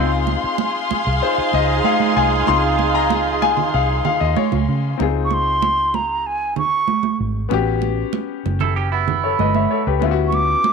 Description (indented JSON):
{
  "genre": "lush 1970s-style soul",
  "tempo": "95 BPM",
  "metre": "4/4",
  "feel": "straight",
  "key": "Db major",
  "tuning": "A4 = 440 Hz",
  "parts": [
    { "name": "warm studio violin section", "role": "second line", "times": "0.0-5.0 s", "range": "Ab4 to C6", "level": "-22 LUFS", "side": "left 1 dB", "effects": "none" },
    { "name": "clear grand piano", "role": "accompaniment", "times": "0.0-10.7 s", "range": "B3 to C6", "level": "-21 LUFS", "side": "left 13 dB", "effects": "none" },
    { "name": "semi-hollow electric guitar", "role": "riff", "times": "0.0-0.1, 8.6-9.8 s", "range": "B3 to A4", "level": "-22 LUFS", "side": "right 12 dB", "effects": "phaser" },
    { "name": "vintage muted fingered electric bass", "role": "bass", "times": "0.0-10.5 s", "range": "F#1 to Db3", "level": "-22 LUFS", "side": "equal", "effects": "tube saturation" },
    { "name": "congas", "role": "percussion", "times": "0.3-10.7 s", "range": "none", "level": "-24 LUFS", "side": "right 15 dB", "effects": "none" },
    { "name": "mellow horn section", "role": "stabs", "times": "1.2-4.6 s", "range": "Eb4 to Ab4", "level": "-22 LUFS", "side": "right 12 dB", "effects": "none" },
    { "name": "hollow concert flute", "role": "melody", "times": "5.2-10.7 s", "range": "Ab5 to D6", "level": "-18 LUFS", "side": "right 2 dB", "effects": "none" }
  ],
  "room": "moderate spring reverb, RT60 1.6 s, studio reverb",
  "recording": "1960s-style stereo with parts hard left and right",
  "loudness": "-16 LUFS",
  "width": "side -5 dB against mid",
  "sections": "0.0-5.0 A section; 5.0-10.7 B section",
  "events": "grand piano solo 0.0-5.0",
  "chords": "0.0 Dbmaj9; 7.5 A13; 10.0 Dmaj13"
}